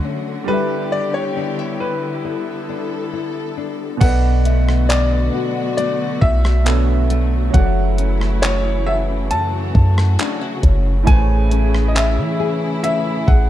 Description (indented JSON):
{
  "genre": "contemporary R&B",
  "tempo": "68 BPM",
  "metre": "4/4",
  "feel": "straight",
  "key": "unclear",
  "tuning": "A4 = 440 Hz",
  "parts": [
    { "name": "clear grand piano", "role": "accompaniment", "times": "0.0-13.5 s", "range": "A2 to E5", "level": "-26 LUFS", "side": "right 10 dB", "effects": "none" },
    { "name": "clear studio string section", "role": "sustained chords", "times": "0.0-13.5 s", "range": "C#3 to A4", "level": "-26 LUFS", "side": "left 2 dB", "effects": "sidechain pumping" },
    { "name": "nylon-string guitar", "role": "arpeggios", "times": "0.0-13.5 s", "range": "B2 to B4", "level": "-25 LUFS", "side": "left 12 dB", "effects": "none" },
    { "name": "bright grand piano", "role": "melody", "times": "0.5-13.5 s", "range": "B4 to A5", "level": "-24 LUFS", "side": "left 1 dB", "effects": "tape echo" },
    { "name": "warm 808-style bass", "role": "bass", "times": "4.0-13.5 s", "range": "F#1 to E3", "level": "-16 LUFS", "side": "equal", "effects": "none" },
    { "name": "gated 80s digital drum machine", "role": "drums", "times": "4.0-13.5 s", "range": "crash cymbal, handclaps, hi-hat, kick drum, rim click", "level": "-18 LUFS", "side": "equal", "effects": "gated reverb" },
    { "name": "small celesta", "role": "texture", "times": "4.5-11.5 s", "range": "E5 to F#5", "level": "-35 LUFS", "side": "left 6 dB", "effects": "none" }
  ],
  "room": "small room ambience",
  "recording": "dark, warm production",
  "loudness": "-15 LUFS",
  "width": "side -12 dB against mid",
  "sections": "0.0-4.0 A section; 4.0-13.5 B section",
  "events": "none",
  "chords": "0.5 G6; 4.0 Bm7; 7.5 F#m7; 11.1 Amaj7",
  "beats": "| 0.48 1.37 2.25 3.13 | 4.01 4.90 5.78 6.66 | 7.54 8.43 9.31 10.19 | 11.07 11.96 12.84"
}